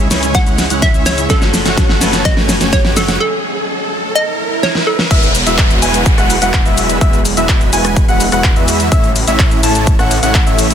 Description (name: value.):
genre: EDM, festival progressive house.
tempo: 126 BPM.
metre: 4/4.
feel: straight.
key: E major.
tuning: A4 = 436 Hz.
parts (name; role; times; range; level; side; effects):
hollow square pluck; melody; 0.0-5.1 s; A4 to F#5; -19 LUFS; right 1 dB; chorus, tape echo.
electric guitar at the edge of break-up; accompaniment; 0.0-3.2 s; C#3 to B4; -24 LUFS; left 1 dB; sidechain pumping, tape echo.
lush unison pad; sustained chords; 0.0-10.7 s; C#3 to A4; -24 LUFS; equal; chorus, sidechain pumping.
dense compressed supersaw; riff; 0.0-10.7 s; G#3 to A5; -18 LUFS; right 1 dB; sidechain pumping, tape echo.
wide detuned saw bass; bass; 0.0-10.7 s; E1 to E2; -19 LUFS; equal; chorus, sidechain pumping.
riser, swell and downlifter; sound effects; 0.0-8.9 s; none; -22 LUFS; right 1 dB; none.
big-room dance drum kit; drums; 0.1-10.7 s; crash cymbal, handclaps, hi-hat, rim click, shaker, snare drum; -17 LUFS; left 1 dB; none.
electronic kick drum; drums; 0.3-10.4 s; none; -13 LUFS; equal; none.
bright baby grand piano; arpeggios; 5.1-10.7 s; E5 to A5; -19 LUFS; left 2 dB; sidechain pumping, tape echo.
room: little or no reverb.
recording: dense, heavily limited modern master.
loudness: -10 LUFS.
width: side -9 dB against mid.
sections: 0.0-5.1 A section; 5.1-10.7 B section.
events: build-up 0.0-5.1; drum fill 0.0-3.2, 4.6-5.1; riser 0.0-5.1; break 3.2-5.1; swell 4.2-5.1; drop 5.1-10.7.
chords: 0.0 C#m; 1.3 F#m; 5.1 Eadd9; 8.9 A.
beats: 0.35 0.82 | 1.30 1.77 2.25 2.73 | 3.20 3.68 4.16 4.63 | 5.11 5.58 6.06 6.54 | 7.01 7.49 7.97 8.44 | 8.92 9.39 9.87 10.35.